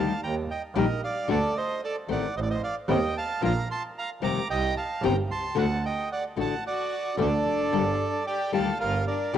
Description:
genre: tango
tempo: 112 BPM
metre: 4/4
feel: rubato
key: unclear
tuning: A4 = 440 Hz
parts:
  - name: bandoneon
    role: melody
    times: 0.0-9.4 s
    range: A4 to D6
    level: -28 LUFS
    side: right 3 dB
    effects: cassette tape
  - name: nylon-string guitar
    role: accompaniment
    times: 0.0-9.4 s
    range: C3 to A4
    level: -29 LUFS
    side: left 7 dB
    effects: cassette tape
  - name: clear double bass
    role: bass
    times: 0.0-9.4 s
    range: F1 to Eb2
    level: -30 LUFS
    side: right 3 dB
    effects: none
  - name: warm chamber violin section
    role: second line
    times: 6.7-9.4 s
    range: D4 to A4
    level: -33 LUFS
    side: left 8 dB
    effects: cassette tape
room: moderate spring reverb, RT60 2.7 s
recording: home recording on cassette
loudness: -25 LUFS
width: side -10 dB against mid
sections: 0.0-9.4 A section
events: none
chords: 0.2 Eb; 1.3 D; 2.4 Adim; 3.4 Bb; 4.5 Cm; 5.6 D; 7.7 Gmadd9; 8.8 Ebadd9/G (rootless)

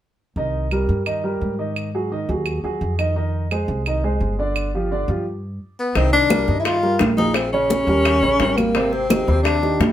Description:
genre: Afro-Cuban jazz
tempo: 172 BPM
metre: 4/4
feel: straight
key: C minor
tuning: A4 = 440 Hz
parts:
  - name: warm concert grand piano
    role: accompaniment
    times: 0.4-9.9 s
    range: C3 to Eb5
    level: -23 LUFS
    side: right 2 dB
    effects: none
  - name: upright bass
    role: bass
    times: 0.4-9.9 s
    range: G1 to Ab2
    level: -23 LUFS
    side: equal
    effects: none
  - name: claves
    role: percussion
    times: 0.7-9.6 s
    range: none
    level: -29 LUFS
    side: right 4 dB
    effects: none
  - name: breathy tenor saxophone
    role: melody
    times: 5.8-9.8 s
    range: Bb3 to F4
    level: -19 LUFS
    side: left 2 dB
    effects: none
  - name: bongos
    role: percussion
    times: 6.0-9.9 s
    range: none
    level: -25 LUFS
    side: left 4 dB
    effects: none
  - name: congas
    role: percussion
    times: 6.0-9.9 s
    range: none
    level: -22 LUFS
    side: equal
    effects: none
room: wet studio reverb, RT60 0.6 s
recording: band playing live in one room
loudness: -18 LUFS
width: side -11 dB against mid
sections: 0.4-6.0 A section; 6.0-9.9 B section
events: stop 5.3-6.0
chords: 0.4 Cm7; 1.8 Ab5; 3.2 Fm7; 4.6 G5; 6.0 Cm9; 7.4 Bbm7; 8.1 Eb7; 8.8 Abmaj7#11

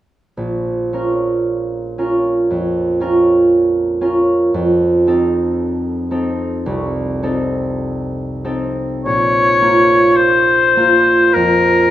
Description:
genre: classical, romantic duo for oboe and harp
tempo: 46-60 BPM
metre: 4/4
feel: rubato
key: Bb minor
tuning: A4 = 439 Hz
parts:
  - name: concert harp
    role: accompaniment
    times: 0.4-11.9 s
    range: Bb1 to Bb4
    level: -15 LUFS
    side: right 2 dB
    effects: none
  - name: warm oboe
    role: melody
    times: 9.0-11.9 s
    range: Bb4 to Db5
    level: -11 LUFS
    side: left 3 dB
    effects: none
room: moderate recital hall reverb, RT60 1.5 s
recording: none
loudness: -13 LUFS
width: side -12 dB against mid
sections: 0.4-9.0 A section; 9.0-11.9 B section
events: none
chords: 0.4 Bbm; 4.5 F7; 9.0 Bbm

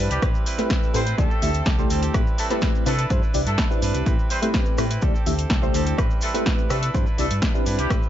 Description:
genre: filtered disco house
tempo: 125 BPM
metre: 4/4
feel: straight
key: A minor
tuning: A4 = 441 Hz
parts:
  - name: reed electric piano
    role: accompaniment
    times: 0.0-8.0 s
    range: A3 to E5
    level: -26 LUFS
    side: left 1 dB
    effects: fast tremolo, phaser, vintage 12-bit sampler grit, sidechain pumping, low-pass filter
  - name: direct-recorded clean electric guitar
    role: riff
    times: 0.0-8.1 s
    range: G3 to B4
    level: -31 LUFS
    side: right 4 dB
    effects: sidechain pumping, low-pass filter
  - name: fingered electric bass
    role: bass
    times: 0.0-8.0 s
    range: A1 to C3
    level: -25 LUFS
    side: equal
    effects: sidechain pumping, low-pass filter
  - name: brilliant horn section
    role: melody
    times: 0.1-8.0 s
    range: G3 to C5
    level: -30 LUFS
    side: equal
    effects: sidechain pumping, low-pass filter
  - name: house drum kit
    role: drums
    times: 0.1-8.0 s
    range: hi-hat, rim click, snare drum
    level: -28 LUFS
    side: equal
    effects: sidechain pumping on hats
  - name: maracas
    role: percussion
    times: 0.1-8.1 s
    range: none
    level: -39 LUFS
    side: right 2 dB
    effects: none
  - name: electronic kick drum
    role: drums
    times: 0.2-8.0 s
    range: none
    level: -23 LUFS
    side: equal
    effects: none
room: little or no reverb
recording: nothing above 7.6 kHz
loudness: -19 LUFS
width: side -11 dB against mid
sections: 0.0-8.1 A section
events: none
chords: 0.2 Am9; 1.2 D7sus4; 2.1 Am9; 2.9 Cmaj9; 4.1 Am9; 5.0 D7sus4; 6.0 Am9; 6.7 Cmaj9

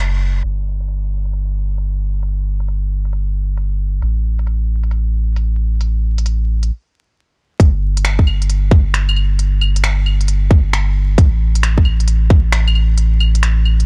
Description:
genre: future garage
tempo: 134 BPM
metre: 4/4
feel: swing 65% on 16ths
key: unclear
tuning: A4 = 440 Hz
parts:
  - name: soft dub sub bass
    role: bass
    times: 0.0-13.9 s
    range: F#1 to A1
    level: -18 LUFS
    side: equal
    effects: sidechain pumping
  - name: organic electronic drum kit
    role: drums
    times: 0.4-13.9 s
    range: claves, finger snaps, hi-hat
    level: -23 LUFS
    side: equal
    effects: none
  - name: electronic kick drum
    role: drums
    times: 7.6-12.4 s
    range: none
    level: -12 LUFS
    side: equal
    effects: overdrive
room: digital ambience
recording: dry, gritty hardware recording, transformer saturation, vinyl crackle, low-pass filter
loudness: -16 LUFS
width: mono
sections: 0.4-7.6 A section; 7.6-13.9 B section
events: filter sweep 0.4-7.6; stop 6.7-7.6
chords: none

